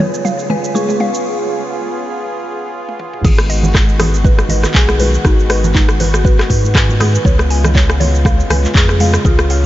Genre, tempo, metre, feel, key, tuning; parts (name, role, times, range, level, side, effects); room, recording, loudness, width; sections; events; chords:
afro house; 120 BPM; 4/4; swing 55% on 16ths; G# dorian; A4 = 439 Hz
warm analog pad; sustained chords; 0.0-9.7 s; C#3 to G#4; -22 LUFS; left 1 dB; chorus, sidechain pumping
mallet-like synth pluck; arpeggios; 0.0-9.6 s; D#4 to C#6; -23 LUFS; left 1 dB; chorus, sidechain pumping, tape echo
afro-pop drum kit; drums; 0.0-9.6 s; crash cymbal, handclaps, hi-hat, rim click, shaker, toms; -18 LUFS; equal
congas; percussion; 0.0-9.4 s; -22 LUFS; right 3 dB
marimba with medium hard mallets; melody; 0.5-1.0, 4.5-9.6 s; E#4 to B4; -23 LUFS; equal; tape echo
warm sub bass; bass; 3.2-9.7 s; G#1 to G#2; -14 LUFS; equal; sidechain pumping
electronic kick drum; drums; 3.2-9.4 s; -13 LUFS; equal
light reverb, digital ambience; high-pass filter, nothing above 7.6 kHz; -11 LUFS; side -14 dB against mid
0.0-3.2 A section; 3.2-9.7 B section
build-up 0.0-3.2; drum fill 0.0-1.2, 2.9-3.2; filter sweep on analog synth pad 0.0-3.2; filter sweep on marimba 0.0-3.2; break 1.2-3.2; drop 3.2-9.7
0.0 C#7; 3.2 G#m7; 7.2 C#7